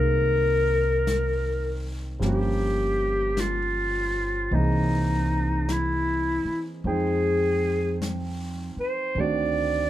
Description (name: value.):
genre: jazz ballad.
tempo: 52 BPM.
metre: 4/4.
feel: swing 66% on 8ths.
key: F minor.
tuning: A4 = 440 Hz.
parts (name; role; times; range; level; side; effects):
clear clarinet; melody; 0.0-9.9 s; D#4 to D5; -25 LUFS; left 1 dB; none.
warm grand piano; accompaniment; 0.0-9.9 s; Eb3 to G5; -30 LUFS; right 3 dB; none.
upright bass; bass; 0.0-9.9 s; G1 to F2; -27 LUFS; equal; none.
jazz brush drum kit; drums; 1.1-9.9 s; brushed snare drum, hi-hat, snare drum; -38 LUFS; left 3 dB; none.
room: light reverb.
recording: dark, warm production.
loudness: -22 LUFS.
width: side -13 dB against mid.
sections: 0.0-9.9 A section.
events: none.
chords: 0.0 Ab69; 2.2 Gm7b5; 4.5 C7alt; 6.8 Fm9; 9.2 D7b9.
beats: 1.06 | 2.21 3.35 4.51 5.67 | 6.84 8.01 9.16.